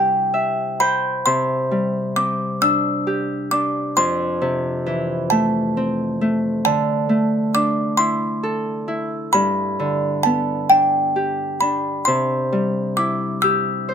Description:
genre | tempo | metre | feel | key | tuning
children's music | 44 BPM (dotted quarters) | 6/8 | straight | C major | A4 = 440 Hz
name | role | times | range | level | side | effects
music box | melody | 0.0-13.9 s | G5 to E6 | -19 LUFS | equal | none
Celtic harp | accompaniment | 0.0-13.9 s | F2 to G5 | -21 LUFS | equal | none
room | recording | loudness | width
light reverb | close, detailed microphones | -18 LUFS | side -7 dB against mid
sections
0.0-1.3 A section; 1.3-13.9 B section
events
harp fill 0.0-1.3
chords
0.0 C; 4.0 Fmaj7; 6.6 Dsus2; 9.3 G; 12.1 C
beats
| 1.26 2.62 | 3.96 5.31 | 6.65 7.98 | 9.33 10.70 | 12.07 13.43

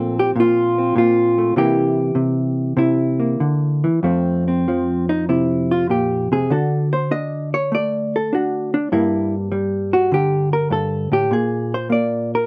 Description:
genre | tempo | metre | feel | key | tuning
solo jazz | 99 BPM | 4/4 | swing 69% on 8ths, rubato | F major | A4 = 440 Hz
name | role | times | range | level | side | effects
hollow-body jazz guitar | solo | 0.0-12.5 s | F2 to Eb5 | -19 LUFS | equal | none
room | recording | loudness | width
light reverb | none | -19 LUFS | mono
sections
0.0-4.1 A section; 4.1-12.5 B section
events
hollow-body jazz guitar solo 4.1-12.5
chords
0.0 Bbsus2; 1.6 C7; 4.1 F; 6.5 D; 8.9 Gmadd9; 11.3 Bb5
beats
0.37 0.98 | 1.57 2.17 2.79 3.42 | 4.06 4.68 5.30 5.91 | 6.52 7.12 7.73 8.33 | 8.93 9.53 10.12 10.72 | 11.32 11.92

